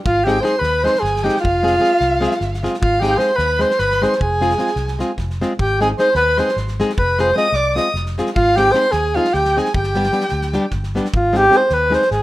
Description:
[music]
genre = balkan folk, Balkan wedding band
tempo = 303 BPM (eighths)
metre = 7/8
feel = straight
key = unclear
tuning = A4 = 441 Hz
[part]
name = warm alto saxophone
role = melody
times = 0.1-12.2 s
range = F4 to Eb5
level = -16 LUFS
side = equal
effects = none
[part]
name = dark violin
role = second line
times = 0.1-10.7 s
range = F5 to Eb6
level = -26 LUFS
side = right 1 dB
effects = none
[part]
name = vintage muted fingered electric bass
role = bass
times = 0.1-12.2 s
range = F1 to Eb2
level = -22 LUFS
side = equal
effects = none
[part]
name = loose indie drum kit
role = percussion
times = 0.1-12.2 s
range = kick drum, snare drum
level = -27 LUFS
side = equal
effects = none
[part]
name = flamenco guitar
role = accompaniment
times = 0.3-12.0 s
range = G3 to Ab4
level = -22 LUFS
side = left 1 dB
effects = none
[sound]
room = moderate small room reverb, RT60 0.6 s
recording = rough home demo mix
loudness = -14 LUFS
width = side -16 dB against mid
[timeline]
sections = 0.1-11.1 A section; 11.1-12.2 A section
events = none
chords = 0.1 Ab; 1.4 Fm; 2.8 Ab; 4.2 Fm; 5.6 Ab; 7.0 Fm; 8.4 Ab; 9.7 G; 11.1 Ab

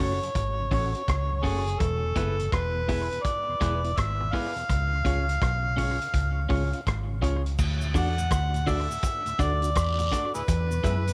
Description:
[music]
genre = roots reggae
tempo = 83 BPM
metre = 4/4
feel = swing 64% on 16ths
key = unclear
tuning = A4 = 440 Hz
[part]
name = overdriven harmonica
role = melody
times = 0.0-11.1 s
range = E4 to F#5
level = -32 LUFS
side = equal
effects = tape echo
[part]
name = clean electric guitar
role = accompaniment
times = 0.0-11.0 s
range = B3 to E5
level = -37 LUFS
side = equal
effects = tape echo
[part]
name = mellow tonewheel organ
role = accompaniment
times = 0.0-11.1 s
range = D2 to F#4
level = -41 LUFS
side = equal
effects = slow rotary speaker, tape echo
[part]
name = vintage muted fingered electric bass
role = bass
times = 0.0-11.1 s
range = E1 to F#2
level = -30 LUFS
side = equal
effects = none
[part]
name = vintage drum kit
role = drums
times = 0.2-11.1 s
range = crash cymbal, hi-hat, kick drum, rim click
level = -33 LUFS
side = equal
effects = none
[part]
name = cabasa and guiro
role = percussion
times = 7.6-11.1 s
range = none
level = -44 LUFS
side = equal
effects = none
[sound]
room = small room ambience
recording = none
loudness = -27 LUFS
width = mono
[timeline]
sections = 0.0-7.6 A section; 7.6-11.1 B section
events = none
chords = 0.0 F#m; 1.8 E; 4.7 C#; 7.6 D; 10.5 E

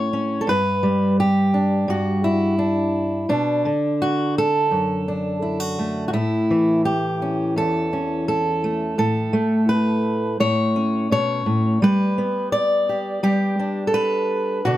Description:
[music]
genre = folk, solo fingerstyle acoustic guitar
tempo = 85 BPM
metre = 4/4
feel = straight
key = unclear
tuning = A4 = 440 Hz
[part]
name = fingerpicked steel-string acoustic guitar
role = solo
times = 0.0-14.8 s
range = E2 to D5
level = -18 LUFS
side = equal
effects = none
[sound]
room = light reverb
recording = none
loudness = -18 LUFS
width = side -14 dB against mid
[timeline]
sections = 0.0-14.8 A section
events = none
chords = 0.5 Em7/G; 3.3 Bm7; 6.1 A; 11.8 Gadd9

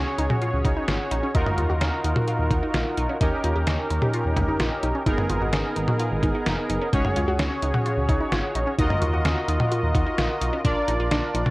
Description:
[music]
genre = synth-pop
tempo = 129 BPM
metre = 4/4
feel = straight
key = Eb minor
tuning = A4 = 441 Hz
[part]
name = analog synth brass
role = accompaniment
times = 0.0-11.5 s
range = Cb4 to Eb5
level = -26 LUFS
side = equal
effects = chorus
[part]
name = wide unison pluck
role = arpeggios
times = 0.0-11.5 s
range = Db4 to G4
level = -30 LUFS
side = equal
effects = tape echo
[part]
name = smooth synth bass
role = bass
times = 0.0-11.4 s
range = F1 to Eb2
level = -26 LUFS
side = equal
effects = none
[part]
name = detuned 8-bit digital drum machine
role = drums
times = 0.2-11.5 s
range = hi-hat, kick drum, snare drum, toms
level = -25 LUFS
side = equal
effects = overdrive
[sound]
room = light reverb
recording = worn, warbling old tape, cassette tape, warbly pitch drift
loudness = -21 LUFS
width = side -21 dB against mid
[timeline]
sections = 0.0-11.5 A section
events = none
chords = 0.0 Dbsus4; 1.3 Ebmadd9; 3.2 Eb7; 5.1 Abmadd9; 6.9 Dbsus4; 8.8 Ebmadd9; 10.6 Bb

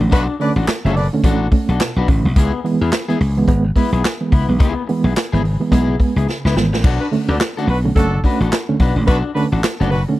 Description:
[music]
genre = funk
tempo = 107 BPM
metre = 4/4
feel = swing 60% on 16ths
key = B dorian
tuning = A4 = 440 Hz
[part]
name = electric guitar at the edge of break-up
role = accompaniment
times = 0.0-10.1 s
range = B3 to B4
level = -24 LUFS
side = left 6 dB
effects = spring reverb
[part]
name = reed electric piano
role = stabs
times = 0.0-10.2 s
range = B2 to C#4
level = -20 LUFS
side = right 3 dB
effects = fast tremolo
[part]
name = slap bass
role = bass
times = 0.0-10.0 s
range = F#1 to E2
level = -17 LUFS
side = equal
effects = none
[part]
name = warm horn section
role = second line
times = 0.1-1.1, 7.0-10.0 s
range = D4 to E5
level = -21 LUFS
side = equal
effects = none
[part]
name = swinging big-band drum kit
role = drums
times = 0.1-10.1 s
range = crash cymbal, handclaps, hi-hat, kick drum, snare drum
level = -17 LUFS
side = equal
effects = none
[sound]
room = little or no reverb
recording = dry, close 1970s-style studio recording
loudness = -14 LUFS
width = side -16 dB against mid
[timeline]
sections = 0.0-10.2 A section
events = drum fill 6.3-6.8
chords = 0.0 Bm7; 2.4 C#m7; 6.8 Bm7

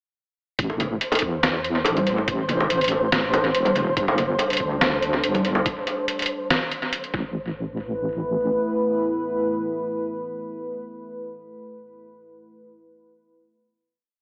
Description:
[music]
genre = deep dubstep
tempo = 142 BPM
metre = 4/4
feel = half-time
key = A minor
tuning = A4 = 440 Hz
[part]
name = deep soft wobble bass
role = bass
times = 0.6-8.6 s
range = E1 to E2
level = -30 LUFS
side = equal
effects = chorus, tube saturation
[part]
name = electronic kick drum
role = drums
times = 0.6-7.2 s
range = none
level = -33 LUFS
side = equal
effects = none
[part]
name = trip hop sampler-style drum kit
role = drums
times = 0.6-7.1 s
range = hi-hat, snare drum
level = -27 LUFS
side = equal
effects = tape echo
[part]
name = flickering grainy texture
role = texture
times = 0.9-7.4 s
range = C5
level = -29 LUFS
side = equal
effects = built-in reverb
[part]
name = bongos and congas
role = percussion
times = 0.7-5.6 s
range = none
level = -28 LUFS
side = equal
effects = tape echo
[part]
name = deep dark ambient pad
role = sustained chords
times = 4.4-10.7 s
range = G3 to B4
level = -30 LUFS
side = equal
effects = chorus, built-in reverb
[sound]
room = moderate echo chamber reverb, RT60 1.8 s, digital ambience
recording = echo-heavy mix, AM radio sound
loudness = -24 LUFS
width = mono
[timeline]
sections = 0.6-7.3 drop; 7.3-10.7 final hit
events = drop 0.6-7.3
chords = 0.6 Am; 4.0 Gsus4; 7.1 Amadd9

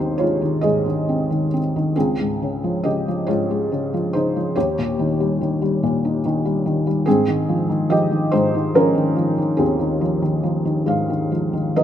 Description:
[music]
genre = classical, lyrical solo piano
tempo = 47 BPM (dotted quarters)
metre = 6/8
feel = uneven beats, rubato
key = Ab major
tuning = A4 = 440 Hz
[part]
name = felt-muted upright piano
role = solo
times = 0.0-11.8 s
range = Db2 to F5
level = -18 LUFS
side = equal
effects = none
[sound]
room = light reverb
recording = close, detailed microphones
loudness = -18 LUFS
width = side -10 dB against mid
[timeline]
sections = 0.0-11.8 A section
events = none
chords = 0.0 Ab6; 2.0 Dbmaj7; 4.6 Eb7; 7.1 Ab6

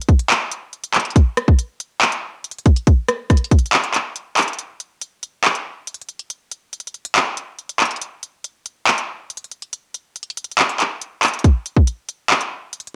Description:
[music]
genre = hip hop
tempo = 140 BPM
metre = 4/4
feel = half-time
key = none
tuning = none
[part]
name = trap drum kit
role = drums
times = 0.0-12.9 s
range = handclaps, hi-hat, kick drum, rim click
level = -18 LUFS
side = equal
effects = cassette tape
[sound]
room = light reverb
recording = home recording on cassette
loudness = -19 LUFS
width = mono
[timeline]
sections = 0.0-4.6 A section; 4.6-13.0 B section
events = break 4.6-11.4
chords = none

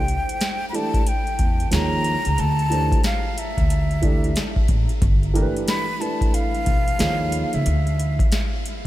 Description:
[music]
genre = hip hop, jazz-hop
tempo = 91 BPM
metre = 4/4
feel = swing 63% on 16ths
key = D dorian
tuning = A4 = 440 Hz
[part]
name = breathy jazz flute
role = melody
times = 0.0-8.5 s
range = E5 to B5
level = -26 LUFS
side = left 1 dB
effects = none
[part]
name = upright bass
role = bass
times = 0.0-8.2 s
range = G1 to E2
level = -22 LUFS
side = equal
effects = none
[part]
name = booming analog drum machine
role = drums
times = 0.1-8.8 s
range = hi-hat, kick drum, snare drum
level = -22 LUFS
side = equal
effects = overdrive
[part]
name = dark grand piano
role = accompaniment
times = 0.7-7.7 s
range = E3 to D5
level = -27 LUFS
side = right 2 dB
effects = wide subtle chorus
[sound]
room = light reverb, small room ambience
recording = none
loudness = -18 LUFS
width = side -15 dB against mid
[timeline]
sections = 0.0-8.9 A section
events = none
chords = 0.0 Cadd9; 1.7 Ebsus2; 2.4 Dsus2; 5.0 G9; 7.0 Ebsus2; 7.7 Dsus2

